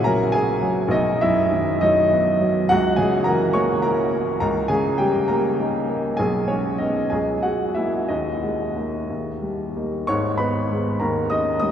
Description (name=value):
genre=classical, romantic character piece for solo piano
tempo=59-71 BPM (dotted quarters)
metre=6/8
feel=rubato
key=G# minor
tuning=A4 = 441 Hz
part: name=clear upright piano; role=solo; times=0.0-11.7 s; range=G#1 to D#6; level=-19 LUFS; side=equal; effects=none
room=wet cathedral reverb, RT60 5.9 s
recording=heard from further back in the room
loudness=-19 LUFS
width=side -9 dB against mid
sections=0.0-10.1 A section; 10.1-11.7 B section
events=none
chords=0.0 F#7/A#; 0.9 B; 2.7 A#dim/C#; 4.4 D#7/C#; 6.2 G#m/B; 7.1 A#m7b5/C#; 8.1 D#sus4; 9.1 D#; 10.1 G#m; 11.0 D#7